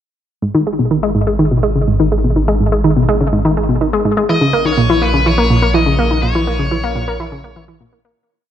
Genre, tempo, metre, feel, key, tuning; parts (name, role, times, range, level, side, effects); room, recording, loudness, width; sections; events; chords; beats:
ambient, sequencer-driven space music; 124 BPM; 4/4; straight; G# minor; A4 = 443 Hz
analog pluck; riff; 0.4-8.1 s; G#2 to A#3; -14 LUFS; equal; chorus, shimmer reverb, tape echo
round analog bass; bass; 0.4-8.1 s; G#1 to A#1; -19 LUFS; equal
smooth overdriven lead guitar; melody; 4.3-7.6 s; B4 to D#5; -19 LUFS; left 2 dB; shimmer reverb, tape echo
moderate plate reverb, RT60 3.5 s; dark, warm production; -12 LUFS; side -10 dB against mid
0.4-8.2 A section
fade-out 5.6-8.2
0.4 G#m; 4.3 A#dim
| 0.43 0.91 1.39 1.88 | 2.36 2.85 3.33 3.81 | 4.30 4.78 5.26 5.75 | 6.23 6.72 7.20 7.68